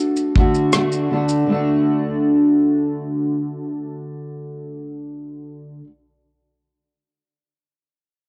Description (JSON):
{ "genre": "acoustic pop", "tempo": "80 BPM", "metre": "4/4", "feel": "straight", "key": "D major", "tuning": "A4 = 440 Hz", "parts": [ { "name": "fingerpicked steel-string acoustic guitar", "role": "accompaniment", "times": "0.0-5.9 s", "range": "D3 to F#4", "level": "-21 LUFS", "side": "equal", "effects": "double-tracked, cassette tape" }, { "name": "natural country drum kit", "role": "drums", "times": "0.2-1.5 s", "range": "kick drum, rim click, shaker", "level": "-20 LUFS", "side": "equal", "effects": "none" } ], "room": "light reverb, studio reverb", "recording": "home recording on cassette", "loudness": "-19 LUFS", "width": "mono", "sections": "0.0-1.5 A section; 1.5-4.5 B section", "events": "none", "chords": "0.0 D" }